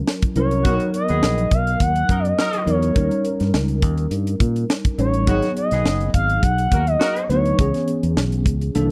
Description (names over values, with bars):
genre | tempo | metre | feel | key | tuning
polished 1980s jazz-funk pop | 104 BPM | 4/4 | swing 54% on 16ths | unclear | A4 = 439 Hz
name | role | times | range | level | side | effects
tine electric piano | accompaniment | 0.0-8.9 s | D#3 to C#5 | -26 LUFS | equal | ensemble chorus
crisp fusion drum kit | drums | 0.1-8.9 s | hi-hat, kick drum, snare drum | -23 LUFS | equal | none
expressive synth lead | melody | 0.4-8.1 s | C#5 to F#5 | -25 LUFS | equal | chorus, slapback echo
fingered electric bass | bass | 0.4-8.9 s | F#1 to A#2 | -23 LUFS | equal | none
mellow horn section | second line | 0.6-7.2 s | D#3 to A#4 | -30 LUFS | equal | none
room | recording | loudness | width
studio ambience | dry, close 1970s-style studio recording | -19 LUFS | mono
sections
0.0-8.9 A section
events
none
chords
0.0 F#7; 0.7 Bmaj7; 3.0 D#7; 5.3 G#m7; 7.6 C#m7